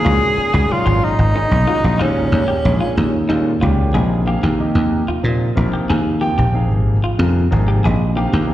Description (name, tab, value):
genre	jazz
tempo	62 BPM (dotted quarters)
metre	6/8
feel	straight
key	unclear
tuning	A4 = 440 Hz
part	bright tenor saxophone	melody	0.0-3.3 s	Db4 to Ab4	-19 LUFS	right 1 dB	slapback echo
part	clear concert grand piano	accompaniment	0.0-8.5 s	Bb2 to G5	-22 LUFS	left 1 dB	slapback echo
part	clean electric guitar	stabs	0.0-8.5 s	Eb4 to Ab4	-27 LUFS	left 1 dB	lush chorus, slapback echo
part	dry thumbed slap bass	bass	0.1-8.5 s	Ab1 to Bb2	-15 LUFS	equal	none
room	little or no reverb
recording	live gig heard through the venue's PA, recital hall reverb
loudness	-14 LUFS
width	side -13 dB against mid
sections	0.0-3.9 A section; 3.9-8.5 B section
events	none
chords	0.0 Dbsus4; 2.0 Eb9sus4; 3.9 Bb13sus4